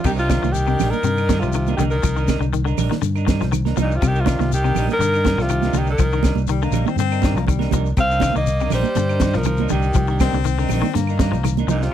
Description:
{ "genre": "afrobeat", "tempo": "121 BPM", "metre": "4/4", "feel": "straight", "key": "C minor", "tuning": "A4 = 439 Hz", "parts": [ { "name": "clear alto saxophone", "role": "melody", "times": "0.0-11.9 s", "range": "Eb4 to F5", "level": "-23 LUFS", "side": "left 1 dB", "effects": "none" }, { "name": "raspy tenor saxophone", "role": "second line", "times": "0.0-11.9 s", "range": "Bb2 to C4", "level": "-30 LUFS", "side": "right 4 dB", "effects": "none" }, { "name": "fingered electric bass", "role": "bass", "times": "0.0-11.9 s", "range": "Bb1 to G2", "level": "-21 LUFS", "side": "equal", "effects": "none" }, { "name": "tight funk drum kit", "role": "drums", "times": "0.0-11.9 s", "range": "crash cymbal, hi-hat, kick drum, snare drum", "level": "-22 LUFS", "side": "equal", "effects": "none" }, { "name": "semi-hollow electric guitar", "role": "arpeggios", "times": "0.1-11.9 s", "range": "C3 to F3", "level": "-26 LUFS", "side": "left 9 dB", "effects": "none" }, { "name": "semi-hollow electric guitar", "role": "stabs", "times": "0.1-11.8 s", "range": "G3 to Bb4", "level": "-28 LUFS", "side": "right 8 dB", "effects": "none" }, { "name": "claves", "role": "percussion", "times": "0.1-11.6 s", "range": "none", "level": "-36 LUFS", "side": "right 25 dB", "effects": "none" }, { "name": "shekere", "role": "percussion", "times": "0.1-11.9 s", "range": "none", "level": "-30 LUFS", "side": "left 10 dB", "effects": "none" }, { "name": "congas", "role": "percussion", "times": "0.3-11.8 s", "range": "none", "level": "-25 LUFS", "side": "right 16 dB", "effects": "none" }, { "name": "clear baritone saxophone", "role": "second line", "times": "6.5-11.5 s", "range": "G3 to C4", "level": "-26 LUFS", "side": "left 15 dB", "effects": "none" } ], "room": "light reverb", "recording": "dry, close 1970s-style studio recording", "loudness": "-17 LUFS", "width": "side -10 dB against mid", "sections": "0.1-11.9 A section", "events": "none", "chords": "0.1 Cm9" }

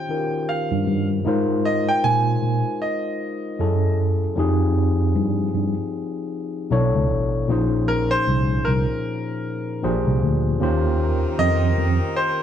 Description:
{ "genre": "R&B, neo-soul", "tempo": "77 BPM", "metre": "4/4", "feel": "swing 60% on 16ths", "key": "unclear", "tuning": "A4 = 441 Hz", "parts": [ { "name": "bright concert grand piano", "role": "melody", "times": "0.0-12.4 s", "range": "Bb4 to Ab5", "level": "-24 LUFS", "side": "right 2 dB", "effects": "none" }, { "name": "overdriven tine electric piano", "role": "accompaniment", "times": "0.0-12.4 s", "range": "Bb2 to C#5", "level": "-23 LUFS", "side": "left 2 dB", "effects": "none" }, { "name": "mellow tine electric piano", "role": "bass", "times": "0.7-12.0 s", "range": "A1 to Bb2", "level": "-21 LUFS", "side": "right 1 dB", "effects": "overdrive, medium stereo tremolo" }, { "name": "warm horn section", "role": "stabs", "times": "10.6-12.4 s", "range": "Eb3 to Eb4", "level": "-31 LUFS", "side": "right 1 dB", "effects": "none" } ], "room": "moderate stone room reverb, RT60 1.1 s", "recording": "band playing live in one room", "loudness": "-19 LUFS", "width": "side -9 dB against mid", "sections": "0.0-10.6 A section; 10.6-12.4 A section", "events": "none", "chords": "0.0 Eb13; 1.3 Ab69; 3.6 Gbm9; 4.4 Fm9; 6.7 Bm11; 7.5 Bbm11; 9.8 Bb13; 10.6 Eb13" }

